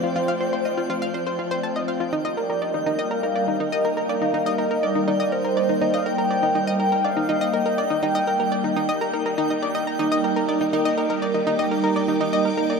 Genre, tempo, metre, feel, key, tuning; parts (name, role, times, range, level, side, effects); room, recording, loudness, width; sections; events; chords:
ambient, sequencer-driven space music; 122 BPM; 4/4; straight; Eb lydian; A4 = 437 Hz
mellow horn-like synth lead; melody; 0.0-9.0 s; C5 to G5; -26 LUFS; equal; lush chorus, shimmer reverb, analog delay
phased string machine; sustained chords; 0.0-12.8 s; F3 to D6; -26 LUFS; equal; ensemble chorus, phaser, shimmer reverb
analog pluck; riff; 0.0-12.8 s; Eb4 to Bb5; -25 LUFS; left 1 dB; chorus, shimmer reverb, analog delay
twinkling granular texture; texture; 0.0-12.8 s; G5; -34 LUFS; right 1 dB; built-in reverb, shimmer reverb
vibraphone with medium hard mallets; arpeggios; 10.0-12.8 s; Eb4 to Bb5; -24 LUFS; right 3 dB; auto-pan, shimmer reverb, analog delay
wet huge ambient reverb, RT60 7.6 s; -20 LUFS; side -5 dB against mid
0.0-2.1 A section; 2.1-12.8 B section
0.0 F; 2.1 Eb